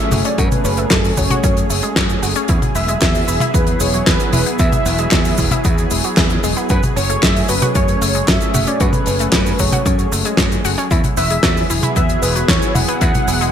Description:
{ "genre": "italo disco", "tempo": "114 BPM", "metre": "4/4", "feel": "straight", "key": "F# minor", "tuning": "A4 = 441 Hz", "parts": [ { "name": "wide unison lead", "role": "melody", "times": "0.0-13.5 s", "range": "B4 to F#5", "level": "-22 LUFS", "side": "equal", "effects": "digital delay" }, { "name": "lush unison pad", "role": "sustained chords", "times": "0.0-13.5 s", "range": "F#3 to G#4", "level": "-22 LUFS", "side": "right 1 dB", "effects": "chorus" }, { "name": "analog pluck", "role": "arpeggios", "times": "0.1-13.5 s", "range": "E3 to F#4", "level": "-24 LUFS", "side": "left 3 dB", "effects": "chorus, ping-pong delay" }, { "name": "modern bright fingered electric bass", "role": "bass", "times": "0.1-13.5 s", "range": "E1 to F#2", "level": "-20 LUFS", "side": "equal", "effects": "none" }, { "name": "damped 70s drum kit", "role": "drums", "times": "0.1-13.5 s", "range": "cabasa, handclaps, hi-hat, snare drum, toms", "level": "-18 LUFS", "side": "left 1 dB", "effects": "gated reverb" }, { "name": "electronic kick drum", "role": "drums", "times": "0.4-13.1 s", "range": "none", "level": "-19 LUFS", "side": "equal", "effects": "none" } ], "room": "light reverb, studio ambience", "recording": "bright 1980s-style digital production", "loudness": "-13 LUFS", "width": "side -9 dB against mid", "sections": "0.0-13.5 A section", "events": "none", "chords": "0.0 F#madd9; 2.5 Eadd9; 6.7 F#madd9; 10.9 Eadd9" }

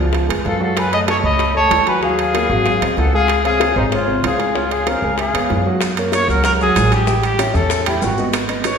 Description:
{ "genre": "Afro-Cuban jazz", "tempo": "190 BPM", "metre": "4/4", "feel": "straight", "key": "Db major", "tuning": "A4 = 440 Hz", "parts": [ { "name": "clear concert grand piano", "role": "accompaniment", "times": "0.0-8.8 s", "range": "C3 to Ab5", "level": "-21 LUFS", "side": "right 1 dB", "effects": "none" }, { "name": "upright bass", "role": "bass", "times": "0.0-8.8 s", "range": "Ab1 to Gb2", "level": "-21 LUFS", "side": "equal", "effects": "none" }, { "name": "bongos", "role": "percussion", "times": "0.1-8.8 s", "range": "none", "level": "-26 LUFS", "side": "left 4 dB", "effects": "none" }, { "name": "timbales", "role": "percussion", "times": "0.1-8.8 s", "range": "none", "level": "-24 LUFS", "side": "right 5 dB", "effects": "none" }, { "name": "warm trumpet", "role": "melody", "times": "0.5-8.8 s", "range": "Eb4 to Eb5", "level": "-19 LUFS", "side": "left 1 dB", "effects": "none" }, { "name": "mellow concert flute", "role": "second line", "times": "0.5-5.6 s", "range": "C5 to Cb6", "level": "-22 LUFS", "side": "left 3 dB", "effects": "none" }, { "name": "maracas", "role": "percussion", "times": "5.8-8.8 s", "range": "none", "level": "-32 LUFS", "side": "left 6 dB", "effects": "none" } ], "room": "wet scoring stage reverb, RT60 1.6 s", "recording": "recorded in a church or concert hall", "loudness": "-14 LUFS", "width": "side -6 dB against mid", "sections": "0.0-5.8 A section; 5.8-8.8 B section", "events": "none", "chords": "0.1 Db7; 0.8 Gbmadd11; 2.0 Ebm9; 2.7 Ab7; 3.3 Dbmaj7; 5.2 Db7; 5.8 F#; 7.1 A9" }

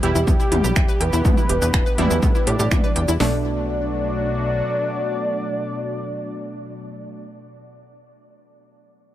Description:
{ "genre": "melodic techno", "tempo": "123 BPM", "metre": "4/4", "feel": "straight", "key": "B minor", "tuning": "A4 = 440 Hz", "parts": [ { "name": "fat analog lead", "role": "melody", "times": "0.0-7.2 s", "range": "G4 to D5", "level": "-26 LUFS", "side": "equal", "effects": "chorus, sidechain pumping, digital delay" }, { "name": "sweeping resonant pad", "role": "sustained chords", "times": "0.0-7.2 s", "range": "B2 to G4", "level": "-29 LUFS", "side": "left 2 dB", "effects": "chorus, sidechain pumping" }, { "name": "analog pluck", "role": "arpeggios", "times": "0.0-3.4 s", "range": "A3 to G5", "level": "-29 LUFS", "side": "equal", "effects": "chorus, sidechain pumping, digital delay" }, { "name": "synth brass stab", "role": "stabs", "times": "0.0-7.2 s", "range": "B2 to E4", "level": "-30 LUFS", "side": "right 2 dB", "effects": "none" }, { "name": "tight sequencer bass", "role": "bass", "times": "0.0-4.6 s", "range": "E1 to A2", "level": "-23 LUFS", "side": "equal", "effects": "sidechain pumping" }, { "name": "techno drum kit", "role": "drums", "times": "0.0-3.2 s", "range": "finger snaps, hi-hat, shaker, toms", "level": "-24 LUFS", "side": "equal", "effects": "sidechain pumping on toms, sidechain pumping on perc, sidechain pumping on hats" }, { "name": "techno drum kit", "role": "drums", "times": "0.3-3.3 s", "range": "hi-hat, kick drum, snare drum", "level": "-20 LUFS", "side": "equal", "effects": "none" } ], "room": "digital ambience", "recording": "none", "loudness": "-18 LUFS", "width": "side -13 dB against mid", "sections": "0.0-3.2 A section; 3.2-7.1 B section", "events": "drop 0.0-3.2", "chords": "0.0 Em; 3.2 Bm7" }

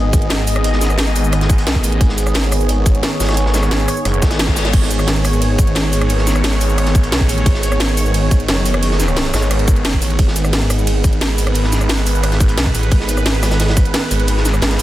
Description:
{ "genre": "dark technical drum and bass", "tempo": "176 BPM", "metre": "4/4", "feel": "straight", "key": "G# minor", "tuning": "A4 = 439 Hz", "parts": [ { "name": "sweeping resonant pad", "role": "sustained chords", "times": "0.0-14.8 s", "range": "D#3 to D#5", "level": "-20 LUFS", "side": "right 1 dB", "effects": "chorus, sidechain pumping" }, { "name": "snarling distorted saw bass", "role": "bass", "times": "0.0-14.8 s", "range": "F#1 to B1", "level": "-17 LUFS", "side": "equal", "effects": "distortion, tube saturation" }, { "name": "crunchy breakbeat drum kit", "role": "drums", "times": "0.1-14.8 s", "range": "hi-hat, snare drum", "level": "-27 LUFS", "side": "equal", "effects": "none" }, { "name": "drum and bass drum kit", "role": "drums", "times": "0.1-14.8 s", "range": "crash cymbal, hi-hat, ride cymbal, rim click, shaker, snare drum", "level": "-20 LUFS", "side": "right 1 dB", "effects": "overdrive" }, { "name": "electronic kick drum", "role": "drums", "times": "0.1-13.8 s", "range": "none", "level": "-14 LUFS", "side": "equal", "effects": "overdrive" }, { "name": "reverse cymbal", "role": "sound effects", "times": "4.2-4.7 s", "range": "none", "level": "-26 LUFS", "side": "left 5 dB", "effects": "none" } ], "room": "digital ambience", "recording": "dense, heavily limited modern master", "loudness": "-13 LUFS", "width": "side -14 dB against mid", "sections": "0.0-14.8 A section", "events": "reverse cymbal 4.2-4.7", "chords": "0.0 G#m" }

